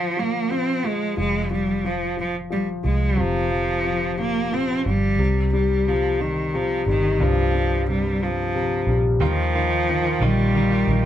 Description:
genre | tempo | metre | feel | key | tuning
six-eight pop ballad | 60 BPM (dotted quarters) | 6/8 | straight | unclear | A4 = 441 Hz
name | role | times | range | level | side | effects
rich cello | melody | 0.0-11.1 s | Eb3 to C4 | -23 LUFS | equal | none
warm concert grand piano | accompaniment | 0.0-11.1 s | G2 to G3 | -25 LUFS | left 3 dB | none
vintage muted fingered electric bass | bass | 1.2-11.1 s | F1 to Eb2 | -24 LUFS | right 1 dB | none
tonewheel organ | sustained chords | 9.2-11.1 s | F4 to G5 | -29 LUFS | right 2 dB | stopped rotary speaker
direct-recorded clean electric guitar | arpeggios | 9.2-11.1 s | Eb3 to F4 | -30 LUFS | right 5 dB | none
room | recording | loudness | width
wet small room ambience, RT60 0.5 s | band playing live in one room | -19 LUFS | side -11 dB against mid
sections
0.0-9.2 A section; 9.2-11.1 B section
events
none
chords
0.0 N.C.; 1.2 F5; 5.2 Csus4; 9.2 Ebadd9

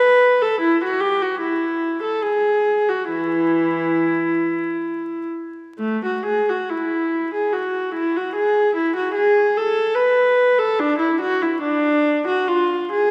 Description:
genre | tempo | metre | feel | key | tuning
classical, baroque-style suite movement for unaccompanied viola | 62-76 BPM | 3/4 | rubato | unclear | A4 = 441 Hz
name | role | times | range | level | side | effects
warm viola | solo | 0.0-13.1 s | E3 to B4 | -20 LUFS | equal | none
room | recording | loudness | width
moderate concert hall reverb, RT60 2.1 s | recorded in a church or concert hall, vinyl crackle | -20 LUFS | mono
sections
0.0-13.1 A section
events
none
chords
none

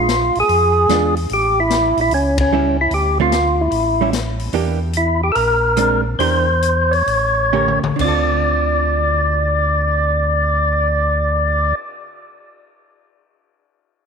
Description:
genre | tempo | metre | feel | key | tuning
soul jazz organ trio | 126-148 BPM | 4/4 | swing 67% on 8ths | D minor | A4 = 441 Hz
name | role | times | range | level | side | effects
percussive tonewheel organ | melody | 0.0-11.8 s | C#4 to D5 | -16 LUFS | equal | slow rotary speaker, overdrive
hollow-body jazz guitar | accompaniment | 0.0-11.9 s | D3 to Bb4 | -23 LUFS | right 12 dB | none
mellow tonewheel organ | bass | 0.0-11.7 s | A1 to F2 | -20 LUFS | equal | slow rotary speaker
swinging big-band drum kit | drums | 0.1-11.7 s | crash cymbal, cymbal swell, hi-hat, kick drum, ride cymbal, rim click, snare drum, toms | -26 LUFS | left 6 dB | none
room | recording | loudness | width
moderate echo chamber reverb, RT60 2.2 s | 1960s-style stereo with parts hard left and right | -14 LUFS | side -6 dB against mid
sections
0.0-4.5 A section; 4.5-8.0 B section; 8.0-11.8 C section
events
band accent 2.3; slowing down 4.5-8.0; drum fill 7.5-8.0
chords
0.0 Bb7; 1.3 A7; 2.9 Dm7; 3.7 A7; 4.5 Em7b5; 5.4 Bb9; 6.2 Em7b5; 7.1 A7b9; 8.0 Dm7

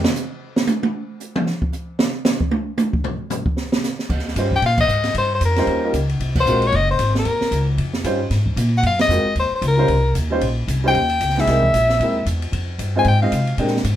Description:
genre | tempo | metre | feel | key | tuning
jazz, small-group swing and bop | 228 BPM | 4/4 | swing 59% on 8ths | Eb mixolydian | A4 = 440 Hz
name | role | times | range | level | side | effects
upright bass | bass | 0.0, 4.1-14.0 s | Gb1 to C3 | -20 LUFS | equal | none
open jazz drum kit | drums | 0.0-13.9 s | crash cymbal, hi-hat, kick drum, ride cymbal, snare drum, toms | -23 LUFS | right 1 dB | none
clear concert grand piano | accompaniment | 4.4-13.7 s | G3 to Eb5 | -22 LUFS | right 1 dB | none
bright soprano saxophone | melody | 4.6-13.6 s | Bb4 to Ab5 | -19 LUFS | left 2 dB | none
room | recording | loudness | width
wet studio ambience, RT60 0.5 s | heard from further back in the room | -17 LUFS | side -12 dB against mid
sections
0.0-4.1 A section; 4.1-14.0 B section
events
drum solo 0.0-4.1; band accent 4.8, 6.3, 9.0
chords
0.0 N.C.; 4.1 Eb13; 6.2 Ab13; 7.3 Eb13; 8.3 Ab13; 9.4 Eb13; 11.5 C7alt; 12.5 Fm7

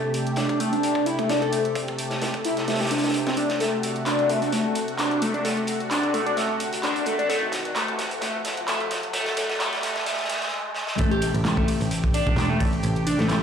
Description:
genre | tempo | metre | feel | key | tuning
breakbeat, breaks | 130 BPM | 4/4 | swing 54% on 16ths | A dorian | A4 = 440 Hz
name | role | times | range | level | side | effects
lush unison pad | sustained chords | 0.0-13.4 s | C3 to G4 | -30 LUFS | equal | chorus, sidechain pumping
overdriven synth lead | riff | 0.0-13.3 s | A3 to A4 | -25 LUFS | left 1 dB | phaser, ping-pong delay
crunchy breakbeat drum kit | drums | 0.1-13.4 s | hi-hat, kick drum, snare drum | -29 LUFS | equal | high-pass filter on kick, high-pass filter on hats, high-pass filter on snare, high-pass filter on room
punchy analog drum machine | drums | 0.1-13.4 s | handclaps, hi-hat, ride cymbal | -32 LUFS | right 1 dB | none
riser | sound effects | 6.2-11.0 s | none | -35 LUFS | equal | none
picked electric bass | bass | 11.0-13.4 s | E1 to A1 | -24 LUFS | equal | none
room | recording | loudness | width
wet studio reverb, RT60 0.7 s | played on a big sound system in a bare room, large studio reverb, high-pass filter | -22 LUFS | side -7 dB against mid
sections
0.0-11.0 A section; 11.0-13.4 B section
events
build-up 0.0-11.0; filter sweep on analog synth lead 0.0-11.0; filter sweep 0.0-11.0; drum fill 3.6-10.5, 10.8; riser 6.2-11.0; stop 10.5-11.0; drop 11.0-13.4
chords
0.0 Am7

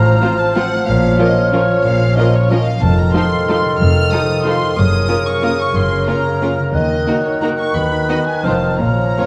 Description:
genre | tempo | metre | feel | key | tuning
classical, orchestral ballroom waltz | 152-200 BPM | 3/4 | rubato | unclear | A4 = 440 Hz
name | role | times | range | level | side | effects
warm studio violin section | melody | 0.0-9.3 s | Db5 to F6 | -25 LUFS | equal | none
mellow clarinet | second line | 0.0-9.3 s | A4 to Db5 | -25 LUFS | equal | none
mellow hollow silver concert flute | second line | 0.0-9.3 s | F6 to Gb6 | -26 LUFS | equal | none
warm bassoon | accompaniment | 0.0-9.3 s | Db3 to F3 | -23 LUFS | equal | none
concert harp | arpeggios | 0.0-9.3 s | F2 to C5 | -24 LUFS | equal | none
rich studio double bass section | bass | 0.0-9.1 s | F1 to Eb2 | -21 LUFS | equal | none
warm studio cello section | bass | 0.0-9.3 s | Eb2 to Bb2 | -23 LUFS | equal | none
rich studio violin section | second line | 0.2-9.3 s | F4 to D#5 | -28 LUFS | equal | none
rich studio viola section | accompaniment | 0.2-9.3 s | F3 to Eb4 | -26 LUFS | equal | none
timpani | percussion | 2.8-3.3 s | F2 | -25 LUFS | equal | none
room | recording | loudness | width
wet concert hall reverb, RT60 2.3 s | vinyl crackle | -15 LUFS | mono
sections
0.0-9.3 A section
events
none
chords
0.0 F/A; 0.9 Bbm; 2.8 F7; 4.8 Gbmaj7; 6.7 Ebm; 7.8 B/D#; 8.5 F7

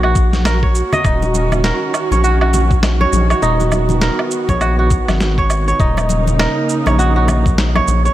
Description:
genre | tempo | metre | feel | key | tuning
organic downtempo | 101 BPM | 4/4 | swing 59% on 16ths | Eb minor | A4 = 442 Hz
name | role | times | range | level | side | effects
muted studio string section | sustained chords | 0.0-8.1 s | Db3 to Gb4 | -20 LUFS | right 3 dB | vintage 12-bit sampler grit, sidechain pumping
kora | arpeggios | 0.0-8.1 s | Eb4 to Eb5 | -19 LUFS | right 1 dB | tape echo
round analog bass | bass | 0.0-8.1 s | Eb1 to Bb1 | -16 LUFS | equal | sidechain pumping
electronic woodblock, cabasa and snare drum | drums | 0.0-8.1 s | none | -21 LUFS | right 1 dB | none
electronic kick drum | drums | 0.2-7.6 s | none | -17 LUFS | equal | none
congas | percussion | 0.3-8.0 s | none | -24 LUFS | left 4 dB | none
room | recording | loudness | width
light reverb, small room reverb | none | -12 LUFS | side -14 dB against mid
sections
0.0-8.1 A section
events
none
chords
0.0 Ebm7; 3.4 Db9sus4/Eb; 5.8 Ebm7

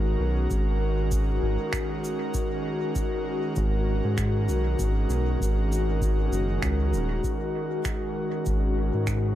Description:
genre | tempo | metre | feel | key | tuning
ambient dub | 98 BPM | 4/4 | swing 58% on 16ths | unclear | A4 = 441 Hz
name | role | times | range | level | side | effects
airy breathy pad | sustained chords | 0.0-9.3 s | D#3 to A#4 | -28 LUFS | equal | chorus
round analog bass | bass | 0.0-9.3 s | D#1 to G#2 | -25 LUFS | equal | none
electronic kick drum | drums | 0.5-9.2 s | none | -31 LUFS | equal | none
shaker and finger snaps | drums | 0.5-9.2 s | none | -36 LUFS | right 1 dB | dub echo
room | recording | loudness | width
studio ambience | echo-heavy mix | -24 LUFS | side -13 dB against mid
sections
0.0-7.2 A section; 7.2-9.3 B section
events
none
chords
0.0 G#m7; 7.2 G#7(no3)

